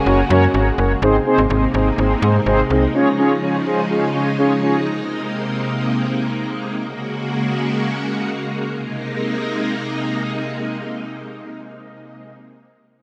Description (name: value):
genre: pop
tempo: 125 BPM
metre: 4/4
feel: straight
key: Ab mixolydian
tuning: A4 = 441 Hz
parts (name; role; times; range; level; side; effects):
- soft struck synth lead; melody; 0.0-0.8 s; Ab5; -32 LUFS; equal; chorus, analog delay
- string machine, violins; sustained chords; 0.0-12.3 s; C3 to Gb4; -24 LUFS; equal; ensemble chorus
- mellow synth brass; accompaniment; 0.1-4.8 s; C4 to Db5; -19 LUFS; equal; chorus
- slap-like FM bass; bass; 0.1-2.9 s; Gb1 to Ab2; -20 LUFS; equal; tube saturation
room: moderate lush hall reverb, RT60 2.8 s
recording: dry, gritty hardware recording, transformer saturation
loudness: -19 LUFS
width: mono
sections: 0.0-1.0 A section; 1.0-8.7 B section; 8.7-12.5 C section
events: none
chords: 0.0 Gbadd9; 1.0 Abadd9; 2.9 Dbadd9; 4.9 Abadd9; 6.8 Gbadd9; 8.7 Abadd9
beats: 0.06 0.54 | 1.02 1.50 1.98 2.46 | 2.94 3.42 3.90 4.38 | 4.86 5.34 5.82 6.30 | 6.78 7.26 7.74 8.22 | 8.70 9.18 9.66 10.14 | 10.62 11.10 11.58 12.06